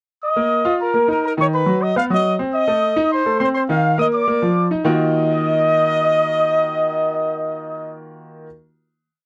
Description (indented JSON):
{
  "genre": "latin",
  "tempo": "207 BPM",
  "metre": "4/4",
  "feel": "straight",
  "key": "Eb minor",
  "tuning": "A4 = 445 Hz",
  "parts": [
    { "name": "mellow trumpet section", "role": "melody", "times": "0.2-7.9 s", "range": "Bb4 to D#6", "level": "-20 LUFS", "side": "equal", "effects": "none" },
    { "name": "clear grand piano", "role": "accompaniment", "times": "0.4-8.5 s", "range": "D#3 to F5", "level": "-22 LUFS", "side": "equal", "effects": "none" }
  ],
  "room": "light reverb",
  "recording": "dry, close 1970s-style studio recording",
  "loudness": "-18 LUFS",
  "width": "mono",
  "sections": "0.2-4.9 verse; 4.9-7.2 final chord",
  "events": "none",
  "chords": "0.2 Ebsus2; 1.4 B; 2.5 Adim; 3.7 Bbsus4; 4.3 Bb; 4.9 Ebmadd9",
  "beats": "| 0.21 0.50 0.79 1.08 | 1.37 1.66 1.95 2.24 | 2.53 2.82 3.11 3.40 | 3.69 3.98 4.27 4.56 | 4.86 5.14 5.44 5.73 | 6.02 6.31 6.60 6.89"
}